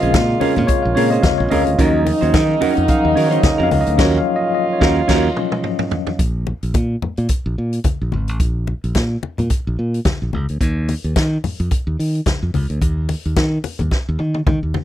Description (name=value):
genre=disco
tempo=109 BPM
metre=4/4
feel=swing 56% on 16ths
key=unclear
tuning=A4 = 441 Hz
part: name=semi-hollow electric guitar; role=accompaniment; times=0.0-5.3 s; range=Db4 to C5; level=-19 LUFS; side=right 7 dB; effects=none
part: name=tine electric piano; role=accompaniment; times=0.0-6.2 s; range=Db3 to Gb5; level=-20 LUFS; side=left 5 dB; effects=medium stereo tremolo
part: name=mellow French horn section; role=sustained chords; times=0.0-6.2 s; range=Db3 to F4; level=-20 LUFS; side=right 2 dB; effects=none
part: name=modern bright fingered electric bass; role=bass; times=0.0-14.7 s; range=Ab1 to Eb3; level=-19 LUFS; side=equal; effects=none
part: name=vintage drum kit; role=drums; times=0.0-14.8 s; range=crash cymbal, hi-hat, kick drum, snare drum, toms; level=-20 LUFS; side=equal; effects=none
part: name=congas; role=percussion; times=0.1-14.8 s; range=none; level=-25 LUFS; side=left 4 dB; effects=none
room=little or no reverb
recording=dry, close 1970s-style studio recording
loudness=-15 LUFS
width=side -12 dB against mid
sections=0.0-6.2 A section; 6.2-14.8 B section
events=tine electric piano solo 0.0-6.2; band accent 4.0-6.2; drum fill 5.1-6.2, 13.9-14.8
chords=0.0 Bbm7; 1.8 Ebm7; 6.2 N.C.